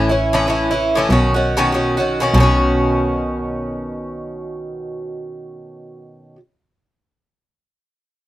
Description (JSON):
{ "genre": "celtic folk, Celtic reel", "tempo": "192 BPM", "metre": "4/4", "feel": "swing 53% on 8ths", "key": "B mixolydian", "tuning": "A4 = 440 Hz", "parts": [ { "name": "Irish bouzouki", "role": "accompaniment", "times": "0.0-6.4 s", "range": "A2 to F#4", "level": "-18 LUFS", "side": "equal", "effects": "none" }, { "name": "rich double bass", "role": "bass", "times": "0.0-5.6 s", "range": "A1 to B1", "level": "-20 LUFS", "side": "equal", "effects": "none" } ], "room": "light reverb", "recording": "close, detailed microphones", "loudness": "-15 LUFS", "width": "side -15 dB against mid", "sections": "0.0-2.4 A section; 2.4-4.9 B section", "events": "none", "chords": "0.0 A; 1.1 Badd9" }